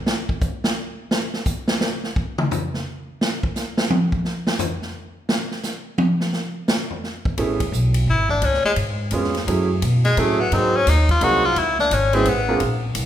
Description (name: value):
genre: jazz, small-group swing and bop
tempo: 172 BPM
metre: 3/4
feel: swing 64% on 8ths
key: unclear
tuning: A4 = 435 Hz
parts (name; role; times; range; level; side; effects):
- swinging big-band drum kit; drums; 0.1-13.1 s; hi-hat, kick drum, ride cymbal, snare drum, toms; -23 LUFS; equal; none
- warm baby grand piano; accompaniment; 7.4-12.6 s; F#3 to G#4; -22 LUFS; right 4 dB; none
- upright bass; bass; 7.4-13.1 s; G#1 to B2; -21 LUFS; equal; none
- edgy tenor saxophone; melody; 8.1-12.6 s; G#3 to F#4; -19 LUFS; left 2 dB; none
room: moderate recital hall reverb, RT60 1.4 s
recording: recorded in a church or concert hall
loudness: -18 LUFS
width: side -10 dB against mid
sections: 0.0-7.4 A section; 7.4-13.1 A section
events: drum solo 0.0-7.4; tenor saxophone solo 7.4-13.1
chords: 0.0 N.C.; 7.4 Amaj9; 8.4 C#7; 9.5 F#m9; 10.5 G#7; 11.6 C#7(no3)